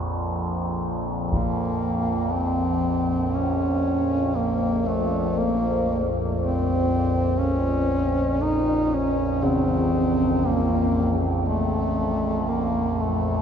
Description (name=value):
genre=dark ambient drone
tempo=59 BPM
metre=4/4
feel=straight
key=Bb harmonic minor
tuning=A4 = 435 Hz
part: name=overtone-sweeping drone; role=drone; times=0.0-13.4 s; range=Bb1 to F2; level=-24 LUFS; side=equal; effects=chorus, built-in reverb
part: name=dark duduk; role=melody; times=1.3-13.4 s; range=A3 to Eb4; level=-24 LUFS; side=equal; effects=ping-pong delay
part: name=taiko ensemble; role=percussion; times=1.3-1.5 s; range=none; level=-30 LUFS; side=equal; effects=low-pass filter on perc
part: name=carillon bells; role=arpeggios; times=9.4-13.4 s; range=Db3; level=-28 LUFS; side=left 1 dB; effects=ping-pong delay
room=wet huge ambient reverb, RT60 7.8 s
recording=none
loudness=-21 LUFS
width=side -8 dB against mid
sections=0.0-13.4 A section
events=none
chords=0.0 Bbm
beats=0.30 | 1.32 2.33 3.35 4.37 | 5.38 6.40 7.42 8.44 | 9.45 10.47 11.49 12.50